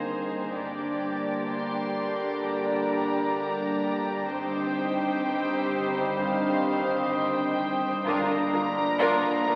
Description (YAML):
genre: cinematic, suspense film score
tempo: 64 BPM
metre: 4/4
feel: straight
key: G minor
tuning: A4 = 440 Hz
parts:
  - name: warm studio violin section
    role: melody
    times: 0.0-9.6 s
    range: Eb5 to C6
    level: -36 LUFS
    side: equal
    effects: none
  - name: warm chamber violin section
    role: second line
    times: 0.0-9.6 s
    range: F4 to D5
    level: -34 LUFS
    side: equal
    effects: none
  - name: warm studio viola section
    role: accompaniment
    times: 0.0-9.5 s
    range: Bb3 to Eb4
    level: -36 LUFS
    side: equal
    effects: none
  - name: clear trombone section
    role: sustained chords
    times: 0.0-9.6 s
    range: D3 to Bb3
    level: -38 LUFS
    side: equal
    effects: none
  - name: drifting glass-harmonics texture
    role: sustained chords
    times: 0.0-9.6 s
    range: C5 to D6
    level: -37 LUFS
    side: equal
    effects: chorus, built-in reverb
  - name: mellow French horn section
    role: sustained chords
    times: 0.0-9.6 s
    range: Bb3 to C5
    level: -35 LUFS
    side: equal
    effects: none
  - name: concert harp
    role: riff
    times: 0.0-9.6 s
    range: G2 to G3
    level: -35 LUFS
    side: equal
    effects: none
  - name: warm symphonic cello section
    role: bass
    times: 0.0-9.5 s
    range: G2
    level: -44 LUFS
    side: equal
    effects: none
  - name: warm symphonic double bass section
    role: bass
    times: 0.0-9.5 s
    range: G1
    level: -43 LUFS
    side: equal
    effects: none
  - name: timpani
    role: percussion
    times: 8.1-9.4 s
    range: G2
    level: -43 LUFS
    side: equal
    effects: none
  - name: warm studio violin section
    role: texture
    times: 8.1-9.6 s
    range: Bb5 to B5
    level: -42 LUFS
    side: equal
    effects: none
room: wet concert hall reverb, RT60 2.0 s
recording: very old 78 rpm record, vinyl crackle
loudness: -27 LUFS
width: mono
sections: 0.0-9.6 A section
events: none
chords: 0.0 Abadd9/G; 0.6 Gm; 4.3 Cm/G; 8.1 Bb/G